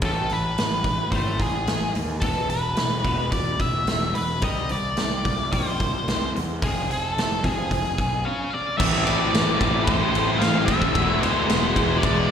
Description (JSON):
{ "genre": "quiet-loud alternative rock", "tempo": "110 BPM", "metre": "4/4", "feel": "straight", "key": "A harmonic minor", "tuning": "A4 = 439 Hz", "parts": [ { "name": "twangy electric guitar", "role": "arpeggios", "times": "0.0-8.8 s", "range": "E2 to A3", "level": "-33 LUFS", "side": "left 2 dB", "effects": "ensemble chorus, slapback echo" }, { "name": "fuzz picked electric bass", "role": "bass", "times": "0.0-12.3 s", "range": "E1 to E2", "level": "-27 LUFS", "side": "equal", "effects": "overdrive" }, { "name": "huge arena drum kit", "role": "drums", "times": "0.0-12.2 s", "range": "crash cymbal, hi-hat, kick drum, ride cymbal, snare drum", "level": "-25 LUFS", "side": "equal", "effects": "none" }, { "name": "octave-fuzz lead guitar", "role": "melody", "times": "0.1-12.3 s", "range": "G#4 to F5", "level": "-26 LUFS", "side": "left 1 dB", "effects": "distortion, slapback echo" }, { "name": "string machine, cellos", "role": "sustained chords", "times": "8.8-12.3 s", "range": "G#4 to C6", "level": "-33 LUFS", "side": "right 1 dB", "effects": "none" }, { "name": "distorted electric guitar", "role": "riff", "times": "8.8-12.3 s", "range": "E2 to A3", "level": "-28 LUFS", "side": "left 1 dB", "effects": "distortion, slapback echo" }, { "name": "fuzz guitar", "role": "riff", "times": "8.8-12.3 s", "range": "A2 to E4", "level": "-26 LUFS", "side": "left 10 dB", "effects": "distortion, slapback echo" }, { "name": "thick fuzz guitar", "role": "riff", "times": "8.8-12.3 s", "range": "A2 to E4", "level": "-27 LUFS", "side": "right 12 dB", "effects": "distortion" } ], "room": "studio reverb", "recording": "live gig heard through the venue's PA, recital hall reverb", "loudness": "-20 LUFS", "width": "side -8 dB against mid", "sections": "0.0-8.8 A section; 8.8-12.3 B section", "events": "break 8.3-8.8", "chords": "0.0 A5; 2.2 E5; 4.4 Cm; 6.6 Fm; 8.8 Am; 11.0 E" }